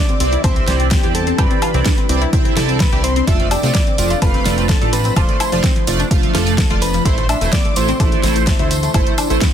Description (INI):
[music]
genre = progressive house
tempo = 127 BPM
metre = 4/4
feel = straight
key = C major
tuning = A4 = 439 Hz
[part]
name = direct-recorded clean electric guitar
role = melody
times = 0.0-9.5 s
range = G4 to E5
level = -25 LUFS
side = right 1 dB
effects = spring reverb, sidechain pumping, digital delay
[part]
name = soft supersaw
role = second line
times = 0.0-9.5 s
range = G5 to E6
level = -29 LUFS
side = equal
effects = vintage 12-bit sampler grit, sidechain pumping, digital delay
[part]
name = shimmering ambient pad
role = sustained chords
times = 0.0-9.5 s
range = C3 to A4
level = -26 LUFS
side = left 1 dB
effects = chorus, built-in reverb, sidechain pumping
[part]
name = tight sequenced synth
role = arpeggios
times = 0.0-9.5 s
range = F3 to A4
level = -24 LUFS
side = left 4 dB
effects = chorus, phaser, sidechain pumping, digital delay
[part]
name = deep house drum kit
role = drums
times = 0.1-9.5 s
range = hi-hat, snare drum, woodblock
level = -23 LUFS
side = left 1 dB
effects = overdrive, small room reverb
[part]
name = chorused polysynth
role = stabs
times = 0.2-9.4 s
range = A3 to F5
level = -22 LUFS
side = right 6 dB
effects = phaser, sidechain pumping, digital delay
[part]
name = plucky analog bass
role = bass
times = 0.2-9.4 s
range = D1 to E2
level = -20 LUFS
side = equal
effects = sidechain pumping
[part]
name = electronic kick drum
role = drums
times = 0.4-9.5 s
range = none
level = -17 LUFS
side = equal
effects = overdrive, small room reverb
[part]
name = tambourine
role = percussion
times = 3.3-9.5 s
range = none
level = -30 LUFS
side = right 3 dB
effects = none
[sound]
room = little or no reverb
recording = dense, heavily limited modern master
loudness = -13 LUFS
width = side -9 dB against mid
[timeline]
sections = 0.0-9.5 A section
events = none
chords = 0.0 Cadd9; 3.3 F6; 7.1 Am